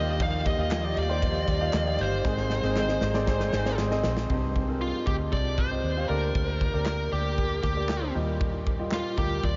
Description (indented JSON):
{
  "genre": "piano-driven pop",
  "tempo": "117 BPM",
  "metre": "4/4",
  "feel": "straight",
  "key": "C minor",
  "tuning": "A4 = 439 Hz",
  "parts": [
    { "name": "high-gain lead guitar", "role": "melody", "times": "0.0-9.6 s", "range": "F4 to F5", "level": "-34 LUFS", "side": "equal", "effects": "distortion, analog delay" },
    { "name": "clear grand piano", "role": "accompaniment", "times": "0.0-9.6 s", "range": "G2 to F5", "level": "-33 LUFS", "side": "equal", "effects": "none" },
    { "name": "warm studio string section", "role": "sustained chords", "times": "0.0-4.3 s", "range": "C3 to F4", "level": "-42 LUFS", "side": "equal", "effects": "none" },
    { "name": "picked steel-string acoustic guitar", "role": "riff", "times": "0.0-4.3 s", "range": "Ab2 to Ab4", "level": "-38 LUFS", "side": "equal", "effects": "none" },
    { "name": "vintage muted fingered electric bass", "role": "bass", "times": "0.0-9.6 s", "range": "G1 to Eb2", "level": "-32 LUFS", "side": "equal", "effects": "none" },
    { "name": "modern studio drum kit", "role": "drums", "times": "0.2-9.6 s", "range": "handclaps, kick drum, ride cymbal, snare drum", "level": "-33 LUFS", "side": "equal", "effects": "none" },
    { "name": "group handclap", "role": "percussion", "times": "0.7-3.9 s", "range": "none", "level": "barely audible", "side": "none", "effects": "none" }
  ],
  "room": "moderate huge ambient reverb, RT60 7.5 s",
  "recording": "dreamy mix soaked in reverb, nothing above 7.5 kHz",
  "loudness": "-27 LUFS",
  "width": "mono",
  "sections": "0.0-4.3 A section; 4.3-9.6 B section",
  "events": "drum fill 2.3-4.3",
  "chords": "0.0 Ebadd9; 2.3 Ab; 4.3 Cm; 6.1 Gm/D; 8.1 Ebadd9",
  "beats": "| 0.20 0.71 1.23 1.74 | 2.25 2.76 3.28 3.79 | 4.30 4.82 5.33 5.84 | 6.35 6.87 7.38 7.89 | 8.41 8.92 9.43"
}